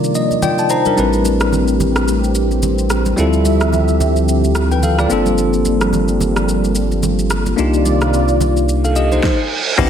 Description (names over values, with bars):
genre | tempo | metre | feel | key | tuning
amapiano | 109 BPM | 4/4 | swing 58% on 16ths | unclear | A4 = 437 Hz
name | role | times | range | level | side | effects
bell-like tine electric piano | accompaniment | 0.0-9.9 s | C3 to Bb5 | -17 LUFS | left 2 dB | medium stereo tremolo
warm analog pad | sustained chords | 0.0-9.9 s | C3 to E5 | -20 LUFS | right 2 dB | chorus, sidechain pumping
deep house drum kit | drums | 0.0-9.9 s | crash cymbal, kick drum, rim click, shaker, snare drum | -24 LUFS | equal | none
congas | percussion | 0.3-9.2 s | none | -26 LUFS | right 4 dB | none
sub bass with octave | bass | 1.0-9.2 s | G1 to D2 | -18 LUFS | equal | none
reverse cymbal | sound effects | 9.0-9.8 s | none | -20 LUFS | right 6 dB | none
tight log drum bass | bass | 9.8-9.9 s | A1 | -15 LUFS | right 1 dB | none
room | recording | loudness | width
moderate plate reverb, RT60 1.5 s | dreamy mix soaked in reverb | -13 LUFS | side -8 dB against mid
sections
0.0-9.8 A section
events
tine electric piano fill 0.0-1.0; reverse cymbal 9.0-9.8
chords
0.0 Cm11; 1.0 Am11; 3.2 Dm11; 5.1 Gm11; 7.6 Cm11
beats
0.42 | 0.98 1.53 2.08 2.63 | 3.18 3.73 4.28 4.83 | 5.38 5.93 6.48 7.03 | 7.58 8.13 8.68 9.23 | 9.78